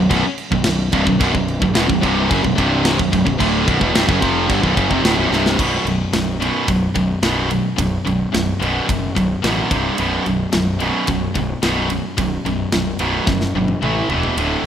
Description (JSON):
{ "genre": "heavy metal", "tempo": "109 BPM", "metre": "4/4", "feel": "straight", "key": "B minor from 5.6 s", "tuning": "A4 = 440 Hz", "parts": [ { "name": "heavy high-gain guitar", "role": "riff", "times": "0.0-14.6 s", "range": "B1 to A3", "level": "-22 LUFS", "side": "left 7 dB", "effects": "distortion" }, { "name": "sludgy distorted guitar", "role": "riff", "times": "0.0-5.6 s", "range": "B1 to E#3", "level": "-21 LUFS", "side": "equal", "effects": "overdrive" }, { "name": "tight distorted guitar", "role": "riff", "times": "0.0-14.6 s", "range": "B1 to A3", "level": "-21 LUFS", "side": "right 8 dB", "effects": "distortion" }, { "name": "fuzz picked electric bass", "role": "bass", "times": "0.0-14.6 s", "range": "B0 to A1", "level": "-23 LUFS", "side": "equal", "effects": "overdrive" }, { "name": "tight metal drum kit", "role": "drums", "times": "0.1-14.5 s", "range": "crash cymbal, kick drum, ride cymbal, snare drum, toms", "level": "-22 LUFS", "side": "equal", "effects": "none" } ], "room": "light reverb, small room ambience", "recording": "rough home demo mix", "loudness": "-15 LUFS", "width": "side -9 dB against mid", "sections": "0.0-5.6 A section; 5.6-14.7 B section", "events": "drum fill 5.3, 13.3-14.4", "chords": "0.0 Bm; 5.6 B5; 9.7 C5; 10.0 B5; 13.8 A5; 14.1 E5", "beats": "0.12 0.66 | 1.21 1.76 2.31 2.85 | 3.40 3.95 4.50 5.04 | 5.59 6.14 6.69 7.24 | 7.79 8.33 8.88 9.43 | 9.98 10.53 11.08 11.63 | 12.18 12.73 13.28 13.83 | 14.38" }